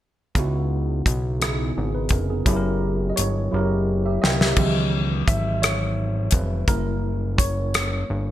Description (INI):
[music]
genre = slow six-eight R&B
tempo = 57 BPM (dotted quarters)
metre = 6/8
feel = straight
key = C# dorian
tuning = A4 = 443 Hz
[part]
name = tine electric piano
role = accompaniment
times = 0.3-8.3 s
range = C#3 to G5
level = -25 LUFS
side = right 1 dB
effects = overdrive, analog chorus
[part]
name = fat analog bass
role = bass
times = 0.4-8.3 s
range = E#1 to C#2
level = -24 LUFS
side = equal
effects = none
[part]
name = damped 70s drum kit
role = drums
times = 0.4-7.9 s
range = crash cymbal, hi-hat, kick drum, rim click, snare drum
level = -22 LUFS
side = equal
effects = gated reverb
[sound]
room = light reverb, small room ambience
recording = bright 1980s-style digital production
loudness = -20 LUFS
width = side -13 dB against mid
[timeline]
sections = 0.4-4.6 A section; 4.6-8.3 B section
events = drum fill 3.5-4.6; tine electric piano solo 4.6-8.3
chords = 0.4 C#m11; 2.5 F#7b9; 4.6 C#m11; 6.7 F#7b9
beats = | 0.36 1.41 | 2.46 3.52 | 4.57 5.62 | 6.67 7.73